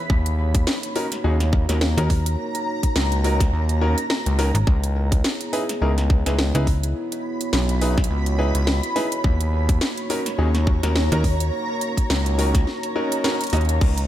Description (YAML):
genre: glitch hop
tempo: 105 BPM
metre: 4/4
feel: swing 57% on 16ths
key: unclear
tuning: A4 = 441 Hz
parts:
  - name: dark analog pad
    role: sustained chords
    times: 0.0-14.1 s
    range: A#3 to C#5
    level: -30 LUFS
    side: right 2 dB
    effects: chorus, vintage 12-bit sampler grit, sidechain pumping
  - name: granular cloud pad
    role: texture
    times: 0.0-14.1 s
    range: C#5 to B5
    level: -30 LUFS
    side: equal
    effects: built-in reverb, ensemble chorus, sidechain pumping
  - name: gritty driven synth bass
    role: bass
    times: 0.1-14.1 s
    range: B1 to D#2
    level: -20 LUFS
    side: equal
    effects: tube saturation
  - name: electronic kick drum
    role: drums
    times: 0.1-13.9 s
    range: none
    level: -19 LUFS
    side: equal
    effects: overdrive
  - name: drum and bass drum kit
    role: drums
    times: 0.3-14.1 s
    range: crash cymbal, hi-hat, snare drum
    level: -27 LUFS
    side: equal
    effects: overdrive
  - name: clear grand piano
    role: stabs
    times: 1.0-13.6 s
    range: C#4 to D#5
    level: -28 LUFS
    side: left 1 dB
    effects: sidechain pumping, digital delay
  - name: slap-like FM bass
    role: bass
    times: 2.0-6.9, 11.1-11.5 s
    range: G#1 to D#2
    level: -20 LUFS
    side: equal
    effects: none
room: light reverb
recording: bright 1980s-style digital production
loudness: -19 LUFS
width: side -12 dB against mid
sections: 0.0-14.1 A section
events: none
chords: 0.1 D#m7; 4.7 C#m7; 9.2 D#m7